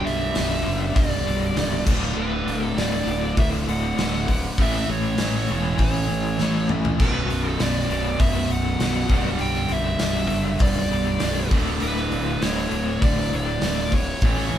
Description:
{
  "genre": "hard rock",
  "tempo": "100 BPM",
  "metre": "4/4",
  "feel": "straight",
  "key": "unclear",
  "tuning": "A4 = 439 Hz",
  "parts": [
    { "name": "dark smooth lead guitar", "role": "melody", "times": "0.0-14.6 s", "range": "B4 to G5", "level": "-29 LUFS", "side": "equal", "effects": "overdrive" },
    { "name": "biting overdriven guitar", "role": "riff", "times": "0.0-14.6 s", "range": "B1 to A3", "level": "-27 LUFS", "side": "right 5 dB", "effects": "none" },
    { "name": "cranked stack guitar", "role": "riff", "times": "0.0-14.6 s", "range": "B1 to A3", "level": "-29 LUFS", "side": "left 5 dB", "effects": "overdrive, tremolo" },
    { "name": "distorted electric guitar", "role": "riff", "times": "0.0-14.6 s", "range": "B1 to A3", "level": "-32 LUFS", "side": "equal", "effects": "overdrive" },
    { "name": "fuzz fingered electric bass", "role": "bass", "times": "0.1-14.6 s", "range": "B0 to A1", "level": "-27 LUFS", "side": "equal", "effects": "overdrive" },
    { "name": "gated 80s drum kit", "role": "drums", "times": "0.1-14.6 s", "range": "crash cymbal, hi-hat, kick drum, snare drum, toms", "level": "-25 LUFS", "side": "equal", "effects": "none" }
  ],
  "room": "moderate studio reverb, RT60 0.8 s",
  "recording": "band playing live in one room",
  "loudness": "-20 LUFS",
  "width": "side -10 dB against mid",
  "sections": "0.0-14.6 A section",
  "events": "drum fill 6.4-7.0",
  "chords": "0.0 G/B; 1.9 D; 4.6 A; 7.0 Bm; 9.1 G/B; 11.5 D5"
}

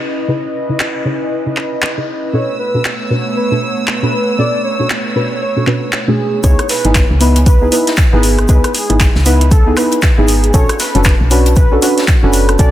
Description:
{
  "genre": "deep house",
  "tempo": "117 BPM",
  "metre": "4/4",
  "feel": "swing 60% on 16ths",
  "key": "C# minor",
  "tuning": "A4 = 437 Hz",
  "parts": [
    { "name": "airy breathy pad", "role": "sustained chords", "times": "0.0-6.4 s", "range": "A3 to D#5", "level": "-20 LUFS", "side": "equal", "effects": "chorus, sidechain pumping" },
    { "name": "deep mellow chord stab", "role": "stabs", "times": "0.3-12.7 s", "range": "B2 to C#5", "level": "-16 LUFS", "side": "equal", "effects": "chorus, cassette tape, sidechain pumping, tape echo" },
    { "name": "deep house drum kit", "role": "drums", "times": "0.8-12.7 s", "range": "handclaps, hi-hat, rim click", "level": "-19 LUFS", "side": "equal", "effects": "soft clipping on snare" },
    { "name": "warm velvety synth lead", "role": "melody", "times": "2.3-12.7 s", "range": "G#4 to D5", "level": "-20 LUFS", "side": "equal", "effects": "chorus, tape echo" },
    { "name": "warm studio violin section", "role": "texture", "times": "2.3-6.5 s", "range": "E6", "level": "-24 LUFS", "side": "equal", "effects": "none" },
    { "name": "woody FM bass", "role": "bass", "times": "6.4-12.7 s", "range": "F#1 to C#2", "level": "-13 LUFS", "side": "equal", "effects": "none" },
    { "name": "electronic kick drum", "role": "drums", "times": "6.4-12.7 s", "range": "none", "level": "-11 LUFS", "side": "equal", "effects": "none" },
    { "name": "tight metal drum kit", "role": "drums", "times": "6.4-12.7 s", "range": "hi-hat, shaker, snare drum", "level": "-25 LUFS", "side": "left 2 dB", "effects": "high-pass filter on hats, high-pass filter on snare, high-pass filter on perc, high-pass filter on room" }
  ],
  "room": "light reverb, small room ambience",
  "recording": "dense, heavily limited modern master",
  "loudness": "-10 LUFS",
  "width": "side -13 dB against mid",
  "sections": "0.0-6.4 A section; 6.4-12.7 B section",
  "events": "filter sweep on analog synth pad 0.0-6.4; drop 6.4-12.7",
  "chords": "0.0 C#m9; 2.3 Bm9; 6.4 C#m9; 10.5 Bm9"
}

